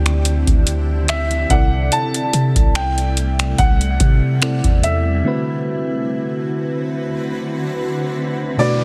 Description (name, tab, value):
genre	contemporary R&B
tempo	72 BPM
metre	4/4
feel	swing 54% on 16ths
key	unclear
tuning	A4 = 441 Hz
part	warm baby grand piano	melody	0.0-8.8 s	D5 to A5	-26 LUFS	equal	digital delay
part	mellow FM electric piano	accompaniment	0.0-8.8 s	B2 to D5	-25 LUFS	equal	chorus
part	granular cloud pad	sustained chords	0.0-8.8 s	C3 to B4	-29 LUFS	equal	built-in reverb, sidechain pumping
part	long sustained 808-style bass	bass	0.0-5.2 s	C2 to C3	-20 LUFS	equal	none
part	downlifter	sound effects	0.0-1.9, 8.6-8.8 s	none	-39 LUFS	equal	none
part	booming analog drum machine	drums	0.1-5.0 s	finger snaps, hi-hat, kick drum	-19 LUFS	equal	soft clipping on snare
room	light reverb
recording	dense, heavily limited modern master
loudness	-18 LUFS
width	mono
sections	0.0-8.6 A section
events	break 5.3-8.6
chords	0.0 D9sus4; 1.5 C6; 5.3 D13